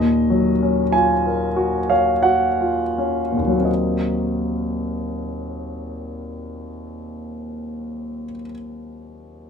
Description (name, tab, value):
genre	classical, impressionist solo piano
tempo	39-50 BPM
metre	3/4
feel	rubato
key	Eb minor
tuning	A4 = 440 Hz
part	warm concert grand piano	solo	0.0-9.5 s	Eb2 to Ab5	-19 LUFS	equal	none
room	moderate stone room reverb, RT60 0.9 s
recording	minimal, uncompressed stereo recording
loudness	-18 LUFS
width	side -6 dB against mid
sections	0.0-3.7 A section; 3.7-7.5 B section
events	slowing down 0.0-3.7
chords	0.0 Ebm9; 3.7 Ebm6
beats	0.95 2.25 | 3.67 4.94 6.20